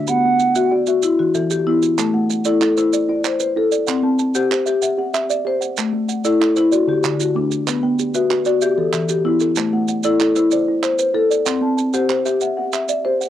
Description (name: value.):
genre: southern african traditional, mbira-style interlocking cycle.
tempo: 126 BPM (dotted quarters).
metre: 12/8.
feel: straight.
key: A dorian.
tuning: A4 = 440 Hz.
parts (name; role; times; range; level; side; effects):
mellow concert flute; melody; 0.0-0.7 s; E5 to F#5; -17 LUFS; right 5 dB; cassette tape.
kalimba; arpeggios; 0.0-13.3 s; D3 to A5; -23 LUFS; right 8 dB; cassette tape.
marimba with medium mallets; arpeggios; 0.0-13.3 s; D3 to A5; -17 LUFS; left 3 dB; cassette tape.
maracas; percussion; 0.1-13.3 s; none; -28 LUFS; right 10 dB; none.
group handclap; percussion; 2.0-12.9 s; none; -26 LUFS; right 9 dB; none.
room: moderate booth ambience, RT60 0.2 s.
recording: home recording on cassette.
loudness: -15 LUFS.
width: side -11 dB against mid.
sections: 0.0-2.0 A section; 2.0-13.3 B section.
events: none.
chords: 0.1 Bm; 1.0 Em; 2.0 Am; 3.9 C; 5.8 Am; 6.7 D; 7.7 Bm; 8.6 Em; 9.6 Am; 11.5 C.